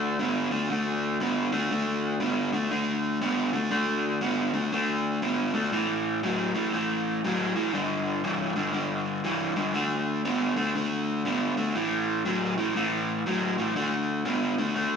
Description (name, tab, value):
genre	blues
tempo	120 BPM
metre	4/4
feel	swing 64% on 8ths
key	D major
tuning	A4 = 440 Hz
part	raw garage guitar	solo	0.0-15.0 s	G2 to B3	-25 LUFS	equal	overdrive
room	wet stone room reverb, RT60 1.3 s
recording	band playing live in one room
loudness	-25 LUFS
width	side -6 dB against mid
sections	0.0-13.8 A section; 13.8-15.0 B section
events	none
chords	0.0 D5; 5.7 A5; 7.7 G5; 9.7 D5; 11.8 A5; 13.8 D5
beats	0.20 0.70 1.21 | 1.71 2.21 2.72 3.22 | 3.72 4.22 4.73 5.23 | 5.73 6.24 6.74 7.24 | 7.74 8.24 8.74 9.25 | 9.75 10.25 10.75 11.25 | 11.75 12.25 12.75 13.25 | 13.75 14.26 14.76